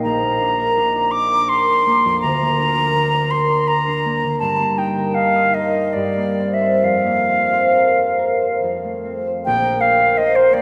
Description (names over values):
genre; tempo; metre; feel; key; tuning
classical, romantic duo for flute and harp; 65-84 BPM; 3/4; rubato; Bb major; A4 = 440 Hz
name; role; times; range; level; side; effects
silver concert flute; melody; 0.0-10.6 s; C5 to D6; -19 LUFS; equal; none
concert harp; accompaniment; 0.0-10.6 s; Bb1 to Bb5; -22 LUFS; equal; none
room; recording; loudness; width
wet cathedral reverb, RT60 5.5 s; in a vast, echoing space; -17 LUFS; mono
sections
0.0-9.4 A section; 9.4-10.6 B section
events
none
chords
0.0 Bb; 2.2 Bb/D; 4.4 Eb/G; 6.0 C5/G; 6.8 Fsus4; 8.6 F; 9.4 Bb5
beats
| 0.04 0.77 1.49 | 2.21 2.94 3.67 | 4.40 5.16 5.96 | 6.84 7.74 8.61 | 9.45 10.17